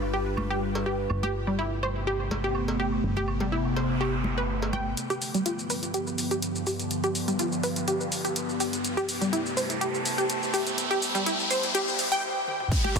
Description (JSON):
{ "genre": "progressive house", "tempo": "124 BPM", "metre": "4/4", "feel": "straight", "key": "unclear", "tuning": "A4 = 438 Hz", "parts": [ { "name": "evolving wavetable pad", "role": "sustained chords", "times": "0.0-13.0 s", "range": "G2 to B4", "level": "-31 LUFS", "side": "equal", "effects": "phaser, built-in reverb, sidechain pumping" }, { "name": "plucky analog bass", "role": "bass", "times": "0.0-5.0, 13.0 s", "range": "G1", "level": "-32 LUFS", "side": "equal", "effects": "sidechain pumping" }, { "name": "woodblock, congas and cowbell", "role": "percussion", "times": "0.0-4.8, 12.8-13.0 s", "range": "none", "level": "-36 LUFS", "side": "right 1 dB", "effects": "sidechain pumping on perc" }, { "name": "wide unison pluck", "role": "arpeggios", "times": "0.1-12.9 s", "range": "G3 to G5", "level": "-29 LUFS", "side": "equal", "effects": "sidechain pumping, dub echo" }, { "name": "noise sweep, riser and downlifter", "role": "sound effects", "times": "3.4-13.0 s", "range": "none", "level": "-34 LUFS", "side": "equal", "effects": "none" }, { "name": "pop drum kit", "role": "drums", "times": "5.0-13.0 s", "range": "crash cymbal, hi-hat, shaker, toms", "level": "-32 LUFS", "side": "equal", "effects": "overdrive" }, { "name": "electronic kick drum", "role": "drums", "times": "12.7-12.8 s", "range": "none", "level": "-25 LUFS", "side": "equal", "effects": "none" } ], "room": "moderate huge ambient reverb, RT60 7.6 s", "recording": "dense, heavily limited modern master, high-pass filter", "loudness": "-25 LUFS", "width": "side -5 dB against mid", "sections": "0.0-5.0 A section; 5.0-12.7 B section", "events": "noise sweep 3.4-5.0; build-up 5.0-12.7; riser 5.0-12.2; filter sweep on synth pluck 5.0-12.7; filter sweep on ambient pad 5.0-12.7; stop 12.2-12.7; drum fill 12.5", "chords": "0.0 G7; 1.1 Amadd9/G; 5.0 G7; 8.8 Amadd9/G", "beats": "0.14 0.62 | 1.10 1.59 2.07 2.55 | 3.04 3.52 4.01 4.49 | 4.97 5.46 5.94 6.42 | 6.91 7.39 7.88 8.36 | 8.84 9.33 9.81 10.30 | 10.78 11.26 11.75 12.23 | 12.71" }